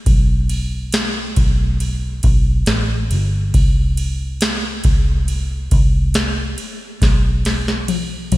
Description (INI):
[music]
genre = pop ballad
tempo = 69 BPM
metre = 4/4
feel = straight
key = unclear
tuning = A4 = 445 Hz
[part]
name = vintage muted fingered electric bass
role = bass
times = 0.1-8.4 s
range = G1 to C2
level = -19 LUFS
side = equal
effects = none
[part]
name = booming analog drum machine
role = drums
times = 0.1-8.4 s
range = kick drum, ride cymbal, snare drum, toms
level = -17 LUFS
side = equal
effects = gated reverb
[sound]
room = little or no reverb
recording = bright 1980s-style digital production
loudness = -15 LUFS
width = side -17 dB against mid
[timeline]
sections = 0.0-8.4 A section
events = drum fill 7.0-8.4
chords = none